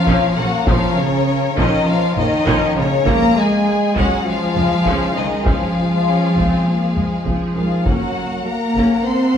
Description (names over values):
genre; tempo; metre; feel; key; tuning
cinematic, epic orchestral film score; 100 BPM; 4/4; straight; unclear; A4 = 436 Hz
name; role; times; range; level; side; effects
rich symphonic violin section; melody; 0.0-9.4 s; Db5 to C6; -24 LUFS; left 6 dB; none
warm symphonic violin section; second line; 0.0-9.4 s; Db4 to C5; -26 LUFS; left 4 dB; none
clear French horn section; sustained chords; 0.0-9.4 s; Db3 to C4; -23 LUFS; left 3 dB; none
rich symphonic string section; sustained chords; 0.0-9.4 s; Ab3 to Gb5; -26 LUFS; left 1 dB; none
warm trombone section; sustained chords; 0.0-9.4 s; Db3 to C4; -24 LUFS; right 2 dB; none
warm symphonic cello section; bass; 0.0-9.4 s; Db3 to C4; -20 LUFS; right 1 dB; none
clear symphonic viola section; accompaniment; 0.1-9.0 s; Db3 to Db4; -24 LUFS; equal; none
clear symphonic double bass section; bass; 0.1-8.8 s; Gb1 to Db2; -26 LUFS; right 2 dB; none
taiko ensemble; drums; 0.1-9.3 s; none; -23 LUFS; equal; none
room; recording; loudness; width
wet recital hall reverb, RT60 1.5 s; small room ambience; -14 LUFS; side -8 dB against mid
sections
0.0-9.4 A section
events
none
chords
0.0 Bbm; 3.1 Db; 7.9 Gb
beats
0.06 | 0.66 1.26 1.86 2.46 | 3.06 3.66 4.26 4.86 | 5.46 6.06 6.66 7.26 | 7.86 8.46 9.06